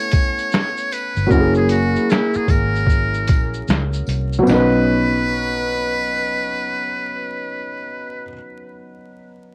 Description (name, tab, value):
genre	lo-fi hip hop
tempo	76 BPM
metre	4/4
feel	swing 64% on 16ths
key	B major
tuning	A4 = 439 Hz
part	trumpet with metal mute	melody	0.0-8.3 s	E4 to C#5	-26 LUFS	equal	analog delay
part	dark upright piano	accompaniment	0.0-9.5 s	F#3 to G#5	-23 LUFS	equal	cassette tape
part	lo-fi sampler-style drum kit	drums	0.1-4.7 s	finger snaps, hi-hat, kick drum, shaker, snare drum	-21 LUFS	equal	overdrive, cassette tape
part	tambourine	percussion	0.1-4.8 s	none	-45 LUFS	equal	none
part	vintage muted fingered electric bass	bass	1.2-8.3 s	F#1 to C#2	-25 LUFS	equal	none
room	moderate booth ambience, RT60 0.2 s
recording	home recording on cassette, vinyl crackle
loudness	-19 LUFS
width	mono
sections	0.0-4.5 A section; 4.5-7.6 B section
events	none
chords	0.0 Amaj7; 1.3 F#7; 4.5 B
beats	0.52 | 1.31 2.10 2.89 3.68 | 4.47 5.26 6.05 6.83